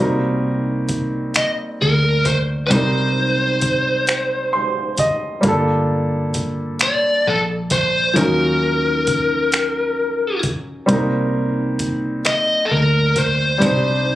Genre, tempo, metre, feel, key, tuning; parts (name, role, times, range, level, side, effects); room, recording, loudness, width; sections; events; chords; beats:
slow six-eight R&B; 44 BPM (dotted quarters); 6/8; straight; C minor; A4 = 439 Hz
warm baby grand piano; accompaniment; 0.0-14.2 s; F3 to C6; -21 LUFS; equal; plate reverb
vintage muted fingered electric bass; bass; 0.0-14.2 s; G1 to Eb2; -22 LUFS; equal
dusty soul sampler-style drum kit; drums; 0.9-13.8 s; finger snaps, hi-hat, kick drum; -20 LUFS; equal
biting lead guitar; melody; 1.4-14.2 s; A4 to Eb5; -18 LUFS; left 1 dB; overdrive, slapback echo, plate reverb
moderate studio reverb, RT60 0.6 s; recorded on a phone in the room, club reverb, compression; -16 LUFS; side -14 dB against mid
0.0-14.2 A section
grand piano fill 4.1-5.4
0.0 Cm9; 5.4 Gm9; 8.2 Ebm9; 10.9 Cm9
1.34 | 2.71 4.07 | 5.43 6.80 | 8.16 9.53 | 10.89 12.25 | 13.62